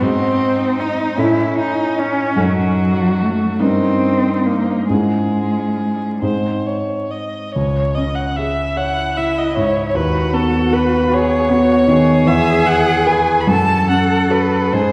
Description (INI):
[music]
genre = classical, slow romantic movement for piano trio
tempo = 44-53 BPM (dotted quarters)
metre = 6/8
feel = rubato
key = C# minor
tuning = A4 = 442 Hz
[part]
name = rich violin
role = melody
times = 0.0-14.9 s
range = C#4 to B5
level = -23 LUFS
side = equal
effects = none
[part]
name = rich cello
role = second line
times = 0.0-14.9 s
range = F#3 to A4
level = -21 LUFS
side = equal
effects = none
[part]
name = warm concert grand piano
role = accompaniment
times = 0.0-14.9 s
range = C#2 to C#5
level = -20 LUFS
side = equal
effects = none
[sound]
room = wet concert hall reverb, RT60 2.0 s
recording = heard from further back in the room, vinyl crackle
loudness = -16 LUFS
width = mono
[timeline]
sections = 0.0-7.5 A section; 7.5-14.9 B section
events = none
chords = 0.0 G#7; 1.2 A; 2.4 D#m7b5/F#; 3.6 D#7/G; 4.9 C#m/G#; 6.2 G#; 7.5 C#m; 10.0 B/D#; 12.3 E; 13.5 F#m